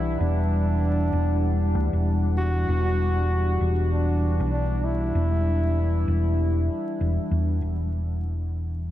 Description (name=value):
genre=ambient dub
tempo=97 BPM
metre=4/4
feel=swing 57% on 16ths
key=E minor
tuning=A4 = 440 Hz
part: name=warm trombone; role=melody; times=0.0-7.3 s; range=D4 to F#4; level=-29 LUFS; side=left 1 dB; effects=dub echo
part: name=warbly tape-like pad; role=sustained chords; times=0.0-8.9 s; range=D3 to F#5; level=-29 LUFS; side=left 1 dB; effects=chorus, built-in reverb
part: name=hollow-body short-scale fingered electric bass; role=bass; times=0.0-8.9 s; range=E1 to E2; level=-23 LUFS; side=equal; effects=none
room=moderate huge ambient reverb, RT60 4.4 s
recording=dreamy mix soaked in reverb, vinyl crackle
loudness=-22 LUFS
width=side -13 dB against mid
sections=0.0-7.6 A section; 7.6-8.9 B section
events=filter sweep on ambient pad 7.6-8.9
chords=0.0 Em9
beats=| 0.20 0.82 1.44 2.06 | 2.68 3.29 3.91 4.53 | 5.15 5.77 6.39 7.01 | 7.62 8.24 8.86